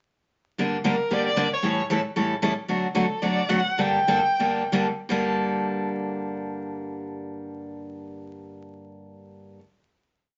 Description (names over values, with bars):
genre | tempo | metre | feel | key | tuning
jazz | 160-229 BPM | 4/4 | swing 56% on 8ths | G harmonic minor | A4 = 440 Hz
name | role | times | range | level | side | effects
picked steel-string acoustic guitar | accompaniment | 0.6-9.6 s | G2 to A4 | -27 LUFS | equal | none
warm violin | melody | 0.9-4.7 s | A4 to G5 | -27 LUFS | equal | none
room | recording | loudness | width
wet studio reverb, RT60 0.5 s | vinyl crackle, nothing above 7.6 kHz | -25 LUFS | mono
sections
0.6-5.1 A section; 5.1-8.1 final chord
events
slowing down 2.7-5.1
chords
0.6 Gm; 1.6 A7; 2.7 D; 3.8 Gmadd9